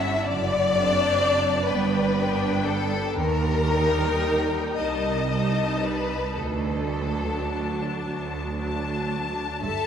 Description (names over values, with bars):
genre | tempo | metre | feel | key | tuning
classical, slow romantic movement for string orchestra | 35-43 BPM (dotted quarters) | 6/8 | rubato | unclear | A4 = 440 Hz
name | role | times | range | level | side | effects
rich symphonic violin section | melody | 0.0-9.9 s | G5 to A5 | -34 LUFS | left 6 dB | none
warm symphonic violin section | second line | 0.0-9.9 s | A4 to E5 | -25 LUFS | left 3 dB | none
clear symphonic viola section | accompaniment | 0.0-9.9 s | F#3 to A4 | -31 LUFS | equal | none
rich symphonic cello section | bass | 0.0-9.7 s | C2 to G2 | -29 LUFS | right 4 dB | none
warm symphonic double bass section | bass | 0.0-9.7 s | F#1 to Eb2 | -31 LUFS | right 3 dB | none
room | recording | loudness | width
wet cathedral reverb, RT60 5.9 s | in a vast, echoing space | -22 LUFS | side -8 dB against mid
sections
0.0-9.6 A section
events
none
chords
0.3 D7/F#; 1.7 G; 3.1 Eb; 4.8 Am7b5/C; 6.4 D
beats
| 0.28 1.70 | 3.14 4.78 | 6.38 8.03 | 9.62